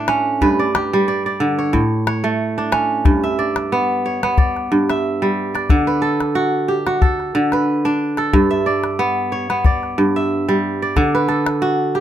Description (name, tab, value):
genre	west african traditional, West African string and xylophone music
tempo	91 BPM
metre	4/4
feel	swing 54% on 16ths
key	G lydian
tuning	A4 = 440 Hz
part	kora	arpeggios	0.0-12.0 s	G2 to E5	-16 LUFS	right 1 dB	none
part	calabash	percussion	0.1-12.0 s	none	-18 LUFS	left 2 dB	none
room	moderate small room reverb, RT60 0.5 s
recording	close, detailed microphones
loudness	-15 LUFS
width	side -11 dB against mid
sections	0.0-3.1 A section; 3.1-12.0 B section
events	none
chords	0.4 G; 1.7 A; 3.1 G; 5.7 D; 8.3 G; 11.0 D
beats	| 0.41 1.07 1.73 2.39 | 3.05 3.71 4.37 5.03 | 5.69 6.35 7.01 7.67 | 8.32 8.98 9.64 10.30 | 10.95 11.61